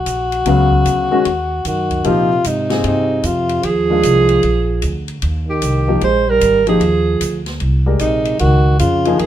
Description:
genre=modal jazz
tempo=151 BPM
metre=4/4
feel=swing 65% on 8ths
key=unclear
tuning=A4 = 440 Hz
part: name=mellow alto saxophone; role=melody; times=0.0-9.3 s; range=Eb4 to C5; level=-16 LUFS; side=right 1 dB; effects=none
part: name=upright bass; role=bass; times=0.0-9.3 s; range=Ab1 to Bb2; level=-18 LUFS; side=equal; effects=none
part: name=open jazz drum kit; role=drums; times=0.1-9.3 s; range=hi-hat, kick drum, ride cymbal, snare drum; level=-28 LUFS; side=left 1 dB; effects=none
part: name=warm baby grand piano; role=accompaniment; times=0.5-9.2 s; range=Db3 to F5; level=-18 LUFS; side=left 4 dB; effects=none
part: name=breathy trombone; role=second line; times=1.7-9.3 s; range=C3 to Ab3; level=-20 LUFS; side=right 3 dB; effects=none
room=light reverb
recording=minimal, uncompressed stereo recording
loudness=-13 LUFS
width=side -11 dB against mid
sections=0.0-9.3 A section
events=none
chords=0.0 Db13sus4; 2.0 Bb13sus4; 8.4 Dbsus4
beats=0.06 | 0.46 0.86 1.25 1.65 | 2.05 2.44 2.84 3.24 | 3.64 4.03 4.43 4.83 | 5.22 5.62 6.02 6.42 | 6.82 7.21 7.61 8.01 | 8.40 8.80 9.20

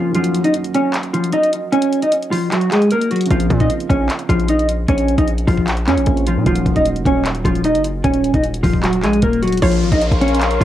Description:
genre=hip hop, trap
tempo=152 BPM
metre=4/4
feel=half-time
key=unclear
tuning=A4 = 438 Hz
part: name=mellow electric guitar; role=melody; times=0.0-10.6 s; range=F3 to Eb5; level=-16 LUFS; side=equal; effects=analog chorus, low-pass filter, tape echo
part: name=dark concert grand piano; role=accompaniment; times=0.0-9.6 s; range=Db3 to Gb4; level=-26 LUFS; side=right 6 dB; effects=low-pass filter, cassette tape
part: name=trap drum kit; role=drums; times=0.1-10.6 s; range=handclaps, hi-hat, kick drum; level=-21 LUFS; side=equal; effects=cassette tape
part: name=distorted 808-style bass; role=bass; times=3.3-10.6 s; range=Eb1 to Bb2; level=-20 LUFS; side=equal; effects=distortion
part: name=hollow square pluck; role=second line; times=9.6-10.4 s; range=Db5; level=-24 LUFS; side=right 4 dB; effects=chorus, phaser, cassette tape, tape echo
part: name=glassy FM pad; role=sustained chords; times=9.8-10.6 s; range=Bb4 to C6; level=-22 LUFS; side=left 2 dB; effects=ensemble chorus, built-in reverb, cassette tape
part: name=downlifter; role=sound effects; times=9.6-10.6 s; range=none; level=-28 LUFS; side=equal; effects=none
room=light reverb, digital ambience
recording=home recording on cassette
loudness=-14 LUFS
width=side -12 dB against mid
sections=0.0-9.6 A section; 9.6-10.6 B section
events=break 0.0-3.3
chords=0.1 Ebm7; 3.3 Bbmadd9; 6.5 Ebm7; 9.6 Bbmadd9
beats=| 0.15 0.54 0.94 1.33 | 1.73 2.12 2.52 2.91 | 3.31 3.70 4.09 4.49 | 4.88 5.28 5.67 6.07 | 6.46 6.86 7.25 7.65 | 8.04 8.44 8.83 9.23 | 9.62 10.02 10.41

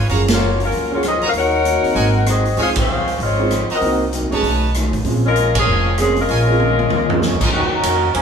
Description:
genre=jazz, big band swing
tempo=194 BPM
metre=4/4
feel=swing 62% on 8ths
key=Bb minor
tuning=A4 = 440 Hz
part: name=brilliant trumpet section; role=stabs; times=0.0-7.5 s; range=Eb4 to Bb5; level=-25 LUFS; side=right 2 dB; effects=none
part: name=upright bass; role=bass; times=0.0-8.2 s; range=F1 to F2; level=-20 LUFS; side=right 1 dB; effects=none
part: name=clear upright piano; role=accompaniment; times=0.1-7.2 s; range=Ab3 to Ab4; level=-23 LUFS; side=right 5 dB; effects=none
part: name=vintage hollow-body jazz guitar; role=accompaniment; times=0.1-8.2 s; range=Gb2 to Gb4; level=-26 LUFS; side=left 2 dB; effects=none
part: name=swinging big-band drum kit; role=drums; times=0.1-8.2 s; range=crash cymbal, hi-hat, kick drum, ride cymbal, rim click, snare drum, toms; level=-22 LUFS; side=equal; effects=none
part: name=mellow saxophone section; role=melody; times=0.3-7.4 s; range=F3 to Gb5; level=-18 LUFS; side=left 3 dB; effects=none
part: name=bright trombone section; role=second line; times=7.2-8.2 s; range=Eb3 to Bb4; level=-18 LUFS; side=right 3 dB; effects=none
room=wet large studio reverb, RT60 1.2 s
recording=band playing live in one room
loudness=-14 LUFS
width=side -6 dB against mid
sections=0.0-7.5 A section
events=band accent 0.3, 2.7, 5.5; drum fill 6.6-7.2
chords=0.1 Gbmaj7; 1.3 Ebm7; 2.0 Ab7; 2.6 Dbmaj7; 3.8 Cm7b5; 4.4 B9; 5.1 Bbm7; 7.5 Ebm7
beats=| 0.10 0.41 0.72 1.03 | 1.34 1.65 1.96 2.27 | 2.58 2.88 3.19 3.50 | 3.81 4.12 4.43 4.74 | 5.05 5.36 5.67 5.98 | 6.29 6.60 6.91 7.22 | 7.53 7.84 8.15

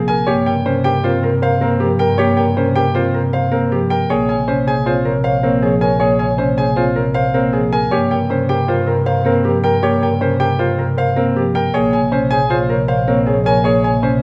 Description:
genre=classical, minimalist pattern music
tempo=157 BPM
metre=5/4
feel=straight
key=unclear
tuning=A4 = 443 Hz
part: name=warm grand piano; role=melody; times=0.0-14.2 s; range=G4 to Ab5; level=-21 LUFS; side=equal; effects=none
part: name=mellow French horn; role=second line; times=0.0-14.2 s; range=Bb4 to Db5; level=-25 LUFS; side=equal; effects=none
part: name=marimba with soft mallets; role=accompaniment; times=0.0-14.2 s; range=C3 to C4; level=-21 LUFS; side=equal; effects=none
part: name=rich double bass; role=bass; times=0.0-14.2 s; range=Bb1 to G2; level=-24 LUFS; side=equal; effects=none
part: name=warm concert grand piano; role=arpeggios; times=0.1-14.2 s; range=C4 to C5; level=-24 LUFS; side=equal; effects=none
room=light reverb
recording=close, detailed microphones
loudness=-16 LUFS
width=mono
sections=0.0-14.2 A section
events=none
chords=0.3 Gm7b5; 4.1 Bbm7; 7.9 Gm7b5; 11.7 Bbm7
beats=| 0.27 0.65 1.04 1.42 1.80 | 2.18 2.56 2.95 3.33 3.71 | 4.09 4.47 4.86 5.24 5.62 | 6.00 6.39 6.77 7.15 7.53 | 7.92 8.30 8.68 9.06 9.44 | 9.82 10.21 10.59 10.97 11.35 | 11.74 12.12 12.50 12.88 13.27 | 13.65 14.03

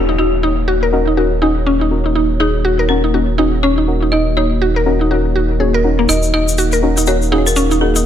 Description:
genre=afro house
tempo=122 BPM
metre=4/4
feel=swing 60% on 16ths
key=Eb minor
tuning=A4 = 441 Hz
part: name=folk marimba with hard mallets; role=melody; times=0.0-7.9 s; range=Gb4 to Eb5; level=-22 LUFS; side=left 1 dB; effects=dub echo
part: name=dark analog pad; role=sustained chords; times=0.0-8.1 s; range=Bb3 to F5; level=-21 LUFS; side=equal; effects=chorus
part: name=deep mellow chord stab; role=stabs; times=0.0-7.9 s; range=Db4 to Db5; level=-20 LUFS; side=left 3 dB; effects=chorus, dub echo
part: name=round analog bass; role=bass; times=0.0-8.1 s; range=Eb1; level=-18 LUFS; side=equal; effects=none
part: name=downlifter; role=sound effects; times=0.0-2.2 s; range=none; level=-32 LUFS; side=right 1 dB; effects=none
part: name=mallet-like synth pluck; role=arpeggios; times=0.1-8.0 s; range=Bb3 to Bb4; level=-17 LUFS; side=equal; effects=chorus, dub echo
part: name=egg shaker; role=percussion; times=6.1-8.0 s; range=none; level=-21 LUFS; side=left 4 dB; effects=none
room=light reverb, small room ambience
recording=none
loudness=-12 LUFS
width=side -10 dB against mid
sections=0.0-8.1 A section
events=filter sweep on synth pluck 0.0-8.1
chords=0.0 Ebm7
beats=| 0.19 0.68 1.17 1.66 | 2.15 2.65 3.14 3.63 | 4.12 4.61 5.10 5.60 | 6.09 6.58 7.07 7.56 | 8.05

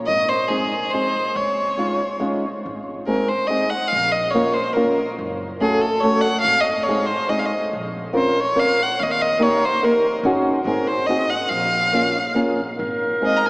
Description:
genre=musette waltz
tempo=142 BPM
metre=3/4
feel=swing 53% on 8ths, rubato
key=unclear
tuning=A4 = 444 Hz
part: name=clear violin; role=melody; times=0.1-13.5 s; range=Ab4 to Bb5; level=-20 LUFS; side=equal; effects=none
part: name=upright bass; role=bass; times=0.1-13.4 s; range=Gb1 to Eb2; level=-35 LUFS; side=equal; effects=none
part: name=fingerpicked old ladder-braced acoustic guitar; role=accompaniment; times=0.5-13.5 s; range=Ab3 to Bb4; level=-21 LUFS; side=equal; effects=none
part: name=clear clarinet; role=second line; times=12.8-13.5 s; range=Bb4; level=-20 LUFS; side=equal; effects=none
room=wet cathedral reverb, RT60 6.5 s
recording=recorded in a church or concert hall, small speaker sound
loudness=-17 LUFS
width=side -31 dB against mid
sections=0.0-2.7 A section; 2.7-13.5 B section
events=none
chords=0.1 Ab; 1.4 Dbadd9; 2.7 Ab; 3.9 Bbm; 5.2 Gbm; 6.4 Ab; 7.7 Bbmadd9; 9.0 Eb; 10.2 Ab7sus4; 10.7 Ab7; 11.5 Bbm7; 12.8 Ab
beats=| 0.09 0.51 0.93 | 1.35 1.78 2.21 | 2.65 3.08 3.50 | 3.92 4.34 4.76 | 5.18 5.60 6.02 | 6.45 6.87 7.30 | 7.73 8.16 8.58 | 8.99 9.41 9.83 | 10.24 10.66 11.09 | 11.51 11.94 12.37 | 12.81 13.24

